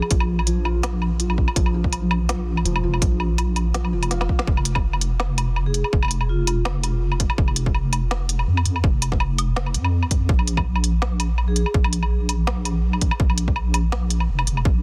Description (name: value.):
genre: half-time drum and bass.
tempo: 165 BPM.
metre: 4/4.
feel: swing 55% on 16ths, half-time.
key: unclear.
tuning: A4 = 440 Hz.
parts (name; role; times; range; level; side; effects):
felt-muted upright piano; arpeggios; 0.0-4.5 s; F3 to F5; -32 LUFS; equal; digital delay.
organic electronic drum kit; drums; 0.0-14.6 s; hi-hat, snare drum, woodblock; -29 LUFS; equal; none.
deep soft wobble bass; bass; 0.1-14.8 s; F1 to F2; -24 LUFS; equal; chorus.
electronic kick drum; drums; 0.1-14.7 s; none; -22 LUFS; equal; none.
vibraphone with medium hard mallets; melody; 5.7-6.6, 11.5-11.6 s; F4 to Ab4; -36 LUFS; equal; tape echo.
room: digital ambience.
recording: dense, heavily limited modern master.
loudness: -21 LUFS.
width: mono.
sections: 0.0-4.5 A section; 4.5-14.8 A section.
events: drop 0.0-4.5, 4.5-14.8; drum fill 4.1-4.5.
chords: 0.0 Bb5; 4.5 N.C.; 10.3 Bb5.